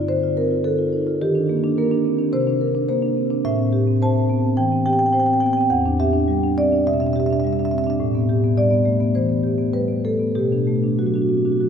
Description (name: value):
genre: classical, contemporary piece for solo marimba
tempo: 106 BPM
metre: 4/4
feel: rubato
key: unclear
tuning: A4 = 439 Hz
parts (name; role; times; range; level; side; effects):
- marimba with medium mallets; solo; 0.0-11.7 s; E2 to A5; -17 LUFS; equal; none
room: wet cathedral reverb, RT60 4.5 s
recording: recorded in a church or concert hall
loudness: -17 LUFS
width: side -7 dB against mid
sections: 0.0-11.7 A section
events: none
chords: 0.0 G9sus4 (rootless); 1.2 Ebmaj7; 2.3 Csus2; 3.5 Am7; 5.7 Em7; 8.0 Am9; 10.4 Bm7